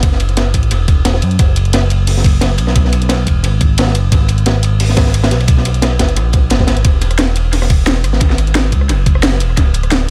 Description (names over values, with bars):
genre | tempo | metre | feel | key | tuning
liquid drum and bass | 176 BPM | 4/4 | straight | E lydian | A4 = 440 Hz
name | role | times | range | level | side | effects
smooth gliding synth bass | bass | 0.0-10.1 s | D1 to F#2 | -16 LUFS | equal | none
crunchy breakbeat drum kit | drums | 0.0-10.0 s | hi-hat, ride cymbal, snare drum | -21 LUFS | equal | high-pass filter on cymbals, high-pass filter on hats, high-pass filter on snare, high-pass filter on room, analog delay
drum and bass drum kit | drums | 0.0-10.0 s | hi-hat, rim click, snare drum | -21 LUFS | equal | analog delay
electronic kick drum | drums | 0.0-9.6 s | none | -15 LUFS | equal | none
room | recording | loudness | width
studio ambience | echo-heavy mix | -13 LUFS | mono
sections
0.0-10.1 A section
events
none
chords
none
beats
| 0.03 0.37 0.71 1.05 | 1.39 1.73 2.08 2.42 | 2.76 3.10 3.44 3.78 | 4.12 4.46 4.80 5.14 | 5.48 5.83 6.17 6.51 | 6.85 7.19 7.53 7.87 | 8.21 8.55 8.89 9.23 | 9.57 9.92